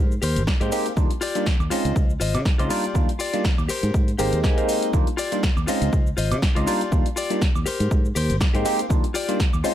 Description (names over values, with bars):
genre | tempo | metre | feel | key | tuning
filtered disco house | 121 BPM | 4/4 | swing 55% on 16ths | Eb major | A4 = 440 Hz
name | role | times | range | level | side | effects
direct-recorded clean electric guitar | riff | 0.0-9.7 s | F4 to Ab5 | -28 LUFS | left 4 dB | sidechain pumping, low-pass filter
fingered electric bass | bass | 0.0-9.6 s | Ab1 to Db3 | -25 LUFS | equal | sidechain pumping, low-pass filter
punchy analog drum machine | drums | 0.1-9.7 s | hi-hat, shaker, snare drum, woodblock | -29 LUFS | equal | none
tube shaker | percussion | 0.2-9.7 s | none | -46 LUFS | left 1 dB | none
electronic kick drum | drums | 0.5-9.5 s | none | -21 LUFS | equal | none
bell-like tine electric piano | accompaniment | 0.6-9.7 s | G3 to G4 | -25 LUFS | right 1 dB | phaser, sidechain pumping, low-pass filter
room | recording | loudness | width
light reverb | none | -19 LUFS | side -11 dB against mid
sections
0.0-9.7 A section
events
clean electric guitar fill 4.2-4.9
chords
0.0 Abmaj9; 1.0 Ebmaj9; 1.7 Dbmaj9; 2.7 Ebmaj9; 3.7 Abmaj9; 4.9 Ebmaj9; 5.7 Dbmaj9; 6.7 Ebmaj9; 7.7 Abmaj9; 8.9 Ebmaj9